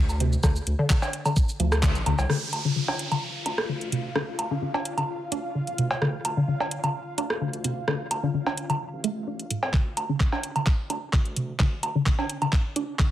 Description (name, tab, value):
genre	minimal techno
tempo	129 BPM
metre	4/4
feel	straight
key	D minor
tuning	A4 = 438 Hz
part	saturated sub bass	bass	0.0-12.8 s	D1 to F2	-30 LUFS	equal	tube saturation, sidechain pumping, high-pass filter
part	garage drum kit	drums	0.1-13.1 s	handclaps, hi-hat, shaker	-31 LUFS	equal	none
part	electronic woodblock, rim click and cowbell	percussion	0.1-12.5 s	none	-29 LUFS	right 1 dB	none
part	resonant blip pluck	riff	0.2-13.0 s	A2 to D4	-28 LUFS	left 1 dB	phaser, sidechain pumping
part	electronic kick drum	drums	0.4-1.9, 9.7-13.1 s	none	-22 LUFS	equal	none
part	downlifter	sound effects	2.3-6.0 s	none	-35 LUFS	right 2 dB	none
part	bubbling stepped-filter texture	texture	2.7-9.7 s	F4 to F5	-37 LUFS	left 1 dB	chorus, built-in reverb, sidechain pumping
room	light reverb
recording	heavily compressed radio sound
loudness	-24 LUFS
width	side -12 dB against mid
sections	0.0-2.3 A section; 2.3-9.7 B section; 9.7-13.1 C section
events	band accent 1.8; build-up 9.7-13.1; drum fill 9.7-13.1; filter sweep on synth pluck 9.7-13.1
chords	0.0 N.C.; 2.3 Dm; 9.7 N.C.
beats	| 0.43 0.90 1.36 1.83 | 2.30 2.76 3.23 3.69 | 4.16 4.62 5.09 5.55 | 6.02 6.48 6.95 7.41 | 7.88 8.34 8.81 9.27 | 9.74 10.20 10.67 11.13 | 11.60 12.06 12.53 12.99